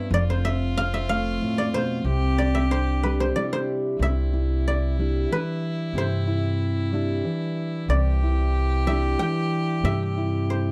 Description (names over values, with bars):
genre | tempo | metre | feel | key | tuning
acoustic folk duo or small band | 92 BPM | 3/4 | straight | C major | A4 = 441 Hz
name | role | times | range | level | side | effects
clear fiddle | second line | 0.0-10.7 s | E4 to G4 | -35 LUFS | equal | none
fingerpicked steel-string acoustic guitar | accompaniment | 0.0-10.7 s | F2 to E4 | -29 LUFS | equal | none
koto | melody | 0.1-10.7 s | B4 to G5 | -30 LUFS | equal | none
upright bass | bass | 0.1-10.7 s | F1 to G2 | -26 LUFS | equal | none
room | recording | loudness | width
small room ambience | dry, close 1970s-style studio recording | -24 LUFS | mono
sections
0.0-4.0 A section; 4.0-10.7 B section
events
koto solo 0.0-4.0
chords
0.1 F; 2.1 Cadd9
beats
| 0.11 0.76 1.41 | 2.05 2.70 3.35 | 3.99 4.64 5.29 | 5.94 6.59 7.24 | 7.89 8.54 9.18 | 9.83 10.48